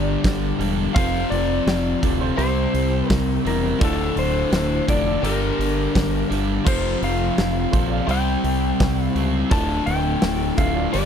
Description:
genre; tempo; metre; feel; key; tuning
classic rock; 84 BPM; 4/4; straight; D minor; A4 = 440 Hz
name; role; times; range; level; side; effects
clean lap steel guitar; melody; 0.0-11.1 s; A4 to A5; -26 LUFS; left 3 dB; none
clear concert grand piano; accompaniment; 0.0-11.1 s; E4 to E5; -34 LUFS; right 12 dB; none
bright tonewheel organ; sustained chords; 0.0-11.1 s; C4 to D5; -37 LUFS; right 1 dB; none
overdriven electric guitar; riff; 0.0-11.1 s; D2 to C4; -25 LUFS; left 16 dB; none
overdriven electric guitar; riff; 0.0-11.1 s; D2 to C4; -26 LUFS; right 16 dB; none
growling fingered electric bass; bass; 0.0-11.1 s; D1 to C#2; -24 LUFS; right 1 dB; overdrive
huge arena drum kit; drums; 0.2-11.1 s; crash cymbal, hi-hat, kick drum, snare drum; -24 LUFS; equal; none
room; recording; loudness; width
little or no reverb; dry, close 1970s-style studio recording; -18 LUFS; side -8 dB against mid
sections
0.0-11.1 A section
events
none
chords
0.0 Gm; 0.9 F; 2.4 C; 3.8 Dm; 5.2 Gm; 6.7 F; 8.1 C; 9.5 Dm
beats
0.23 | 0.95 1.66 2.38 3.09 | 3.80 4.52 5.23 5.95 | 6.66 7.37 8.08 8.80 | 9.51 10.22 10.94

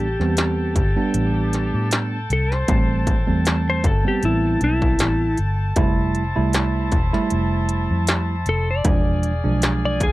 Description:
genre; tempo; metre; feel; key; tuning
straight-eighth soul blues; 78 BPM; 4/4; swing 54% on 16ths; A minor; A4 = 440 Hz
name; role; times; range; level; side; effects
clean lap steel guitar; melody; 0.0-10.1 s; E4 to D5; -24 LUFS; left 1 dB; none
tine electric piano; accompaniment; 0.0-10.0 s; F3 to E4; -24 LUFS; right 4 dB; none
clear horn section; sustained chords; 0.0-10.1 s; E4 to A5; -29 LUFS; left 1 dB; none
vintage muted fingered electric bass; bass; 0.0-10.1 s; E1 to A2; -21 LUFS; equal; none
industrial drum kit; drums; 0.2-10.1 s; hi-hat, kick drum, snare drum; -21 LUFS; equal; distortion
room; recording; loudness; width
little or no reverb; dry, close 1970s-style studio recording; -18 LUFS; side -17 dB against mid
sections
0.0-10.1 A section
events
electric slide guitar solo 0.0-10.1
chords
0.0 Am7; 5.8 Fmaj7; 8.9 E7b9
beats
0.37 1.14 1.91 | 2.68 3.45 4.22 5.00 | 5.77 6.54 7.31 8.08 | 8.85 9.62

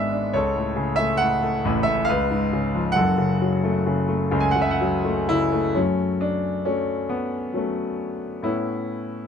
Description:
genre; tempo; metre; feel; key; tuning
classical, lyrical solo piano; 62-70 BPM; 3/4; rubato; F# minor; A4 = 440 Hz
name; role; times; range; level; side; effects
clear concert grand piano; solo; 0.0-9.3 s; F#1 to G#5; -20 LUFS; left 1 dB; none
room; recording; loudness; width
light reverb; close, detailed microphones; -20 LUFS; side -7 dB against mid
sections
0.0-5.8 A section; 5.8-9.3 B section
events
none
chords
0.3 A6; 2.1 C#7; 3.0 F#m; 8.4 Aadd9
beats
| 0.34 1.21 2.08 | 2.96 3.87 4.81 | 5.76 6.67 7.56 | 8.44

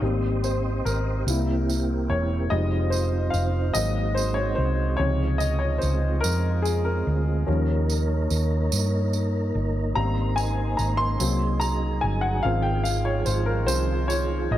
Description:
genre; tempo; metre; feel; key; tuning
slow gospel; 48 BPM (dotted quarters); 6/8; straight; Ab major; A4 = 440 Hz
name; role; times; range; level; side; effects
warm baby grand piano; accompaniment; 0.0-14.6 s; C3 to C6; -27 LUFS; left 3 dB; none
tonewheel organ; sustained chords; 0.0-14.6 s; F3 to Eb5; -30 LUFS; right 3 dB; slow rotary speaker, chorus vibrato
warm French horn section; sustained chords; 0.0-14.6 s; C3 to Eb5; -38 LUFS; right 1 dB; none
hollow-body short-scale fingered electric bass; bass; 0.0-14.6 s; E1 to G2; -24 LUFS; equal; none
tambourine; percussion; 0.4-14.5 s; none; -34 LUFS; right 8 dB; none
room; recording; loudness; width
light reverb, studio ambience; none; -22 LUFS; side -13 dB against mid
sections
0.0-14.6 A section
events
grand piano solo 0.0-14.6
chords
0.0 Abmaj7; 1.3 C7; 2.5 Fm7; 3.7 Ab7; 5.0 Dbmaj7; 7.5 Eb7; 10.0 Abmaj7; 11.2 Ab7/C; 12.4 Abmaj13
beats
| 0.02 1.26 | 2.50 3.75 | 4.99 6.23 | 7.47 8.72 | 9.96 11.20 | 12.44 13.68

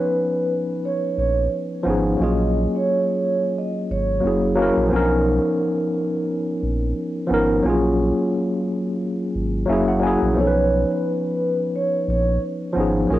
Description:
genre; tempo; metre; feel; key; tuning
lo-fi hip hop; 88 BPM; 4/4; swing 55% on 16ths; unclear; A4 = 440 Hz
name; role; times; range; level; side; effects
vibraphone with soft mallets; melody; 0.0-4.4, 10.4-13.2 s; A#4 to D#5; -24 LUFS; right 2 dB; low-pass filter, tape echo
tine electric piano; accompaniment; 0.0-13.2 s; E#3 to G#5; -20 LUFS; equal; fast stereo tremolo, low-pass filter, cassette tape
warm sub bass; bass; 1.2-13.2 s; F#1 to B1; -24 LUFS; equal; tube saturation
room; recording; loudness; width
wet studio reverb, RT60 0.6 s; home recording on cassette; -18 LUFS; side -14 dB against mid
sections
0.0-13.2 A section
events
none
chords
0.0 Bmaj9#11; 2.2 F#maj9/A#; 4.2 F#9; 4.9 Bmaj9#11; 7.6 F#maj9/A#; 9.7 F#9; 10.4 Badd9(#11)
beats
0.14 0.83 1.51 | 2.19 2.87 3.56 4.24 | 4.92 5.60 6.28 6.96 | 7.64 8.33 9.01 9.69 | 10.37 11.05 11.74 12.42 | 13.10

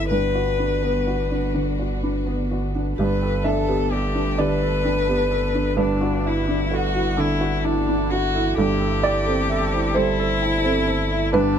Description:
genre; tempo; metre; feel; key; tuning
neoclassical piano and strings; 43 BPM (dotted quarters); 6/8; rubato; G major; A4 = 440 Hz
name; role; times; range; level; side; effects
clear violin; melody; 0.0-11.6 s; D4 to B4; -24 LUFS; left 4 dB; none
warm upright piano; accompaniment; 0.0-11.6 s; G2 to E5; -23 LUFS; right 2 dB; none
rich chamber string section; sustained chords; 0.0-11.6 s; C4 to B4; -34 LUFS; left 1 dB; none
saturated sub bass; bass; 0.0-11.6 s; G1; -26 LUFS; equal; none
buzzing marimba with medium mallets; arpeggios; 0.1-11.5 s; D4 to B5; -30 LUFS; right 3 dB; tape echo
room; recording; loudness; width
light reverb; none; -19 LUFS; side -8 dB against mid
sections
0.0-3.0 A section; 3.0-11.6 A section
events
none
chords
0.1 Bm/G; 3.0 Gadd9; 5.8 Dadd9/G; 8.6 Am7/G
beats
| 0.09 1.55 | 2.98 4.39 | 5.78 7.18 | 8.57 9.96 | 11.34

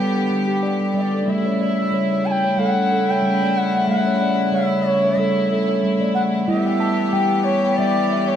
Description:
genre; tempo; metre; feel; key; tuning
world meditative, meditative tuned percussion; 92 BPM; 4/4; swing 54% on 16ths; unclear; A4 = 441 Hz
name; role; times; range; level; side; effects
bright reedy bansuri; melody; 0.0-8.4 s; C#5 to A5; -23 LUFS; equal; diffuse ambient delay
rich studio string section; sustained chords; 0.0-8.4 s; C#3 to G4; -24 LUFS; equal; none
steel tongue drum; arpeggios; 0.0-8.4 s; G3 to A5; -19 LUFS; equal; none
room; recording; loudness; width
wet recital hall reverb, RT60 1.3 s, small room ambience; none; -17 LUFS; side -9 dB against mid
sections
0.0-1.3 A section; 1.3-8.4 B section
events
none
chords
0.0 G; 1.3 A; 6.5 Em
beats
0.63 | 1.28 1.93 2.58 3.23 | 3.88 4.54 5.19 5.84 | 6.49 7.14 7.79

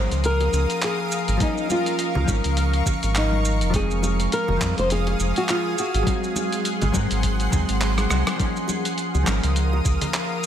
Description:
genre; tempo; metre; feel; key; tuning
sunset chillout; 103 BPM; 4/4; swing 57% on 16ths; Db major; A4 = 440 Hz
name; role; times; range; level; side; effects
flamenco guitar; melody; 0.0-7.8 s; Eb4 to C5; -26 LUFS; left 1 dB; ping-pong delay
hollow-body jazz guitar; accompaniment; 0.0-10.5 s; F3 to Bb4; -28 LUFS; left 2 dB; auto-pan, ping-pong delay
shimmering ambient pad; sustained chords; 0.0-10.5 s; Ab4 to Eb6; -28 LUFS; equal; chorus, built-in reverb
round analog bass; bass; 0.0-10.0 s; F1 to Ab2; -22 LUFS; equal; tube saturation
dusty soul sampler-style drum kit; drums; 0.1-10.5 s; handclaps, hi-hat, rim click, shaker; -29 LUFS; right 1 dB; none
bongos and congas; percussion; 0.4-10.1 s; none; -32 LUFS; left 2 dB; none
electronic kick drum; drums; 1.4-10.0 s; none; -26 LUFS; equal; none
room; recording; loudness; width
light reverb, digital ambience; none; -20 LUFS; side -10 dB against mid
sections
0.0-8.4 A section; 8.4-10.5 A section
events
kick drops out 7.8-8.4; drum fill 8.0-8.4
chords
0.0 Db69; 3.7 Fm7; 5.8 Ab7; 8.4 Db69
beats
0.24 0.82 | 1.41 1.99 2.57 3.15 | 3.74 4.32 4.90 5.48 | 6.07 6.65 7.23 7.81 | 8.40 8.98 9.56 10.14

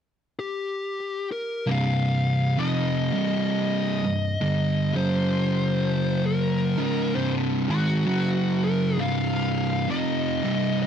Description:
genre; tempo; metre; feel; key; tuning
metal; 66 BPM; 4/4; swing 59% on 8ths; unclear; A4 = 441 Hz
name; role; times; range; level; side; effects
fuzz lead guitar; melody; 0.4-10.9 s; F#4 to F5; -29 LUFS; left 3 dB; wah, distortion, tape echo
fuzz guitar; riff; 1.7-10.9 s; C2 to Ab3; -22 LUFS; right 1 dB; distortion
room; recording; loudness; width
digital ambience; dry, close 1970s-style studio recording; -22 LUFS; side -8 dB against mid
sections
0.0-1.7 A section; 1.7-10.9 B section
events
none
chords
0.0 N.C.; 1.7 Cm; 4.9 F#5; 6.7 Cm; 8.1 F#5; 9.0 Cm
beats
0.76 | 1.68 2.59 3.50 4.42 | 5.33 6.25 7.16 8.07 | 8.98 9.90 10.81

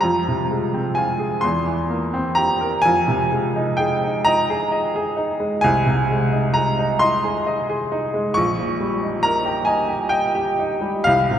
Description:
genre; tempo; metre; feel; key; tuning
classical, romantic nocturne for solo piano; 43 BPM (dotted quarters); 6/8; uneven beats, rubato; unclear; A4 = 440 Hz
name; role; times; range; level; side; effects
clear baby grand piano; solo; 0.0-11.4 s; Bb1 to Db6; -18 LUFS; equal; none
room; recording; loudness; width
wet church reverb, RT60 3.3 s; none; -18 LUFS; side -9 dB against mid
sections
0.0-11.4 A section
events
none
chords
0.0 Fm; 1.4 C7/E; 2.9 Fm7; 5.6 Ab/C; 8.3 Eb7/Bb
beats
| 0.01 1.44 | 2.86 4.26 | 5.63 6.99 | 8.34 9.66 | 11.07

